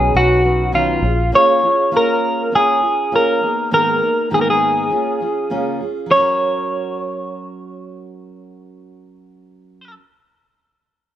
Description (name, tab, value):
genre	acoustic pop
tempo	101 BPM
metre	4/4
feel	swing 55% on 16ths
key	F# major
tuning	A4 = 438 Hz
part	twelve-string electric guitar	melody	0.0-9.9 s	E#4 to C#5	-15 LUFS	equal	spring reverb
part	fingerpicked steel-string acoustic guitar	accompaniment	0.0-10.0 s	G#2 to B4	-22 LUFS	right 2 dB	none
part	vintage muted fingered electric bass	bass	0.0-1.3 s	A#1 to B1	-18 LUFS	equal	none
room	moderate studio reverb, RT60 0.6 s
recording	rough home demo mix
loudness	-14 LUFS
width	side -11 dB against mid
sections	0.0-6.1 A section; 6.1-8.5 B section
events	none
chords	0.0 Badd9; 1.0 A#m7; 3.4 G#madd9; 4.9 C#6; 6.1 F#